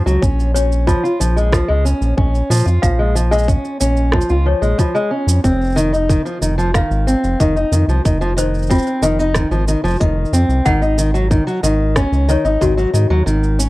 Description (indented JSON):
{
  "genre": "folktronica",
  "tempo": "92 BPM",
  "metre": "4/4",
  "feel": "straight",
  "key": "unclear",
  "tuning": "A4 = 441 Hz",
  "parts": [
    { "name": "fingerpicked steel-string acoustic guitar", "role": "arpeggios", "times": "0.0-13.7 s", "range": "Eb3 to F4", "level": "-17 LUFS", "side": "equal", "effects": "low-pass filter, tape echo" },
    { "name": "round analog bass", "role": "bass", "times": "0.0-13.7 s", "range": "F1 to Bb2", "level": "-16 LUFS", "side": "equal", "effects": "none" },
    { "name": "electronic shaker and rim click", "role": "drums", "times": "0.1-13.7 s", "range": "none", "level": "-25 LUFS", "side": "right 2 dB", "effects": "small room ambience" },
    { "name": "electronic kick drum", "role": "drums", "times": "0.2-12.7 s", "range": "none", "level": "-17 LUFS", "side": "equal", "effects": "small room ambience" },
    { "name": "toy piano", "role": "second line", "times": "0.5-12.9 s", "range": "F4 to Gb5", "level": "-24 LUFS", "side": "left 4 dB", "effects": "vintage 12-bit sampler grit, tape echo" }
  ],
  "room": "small room ambience",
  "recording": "dry, close 1970s-style studio recording",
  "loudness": "-13 LUFS",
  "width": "side -18 dB against mid",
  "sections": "0.0-13.7 A section",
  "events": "break 13.3-13.7",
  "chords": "0.2 Bbm7; 5.4 F7(no3); 10.7 Ab7sus4"
}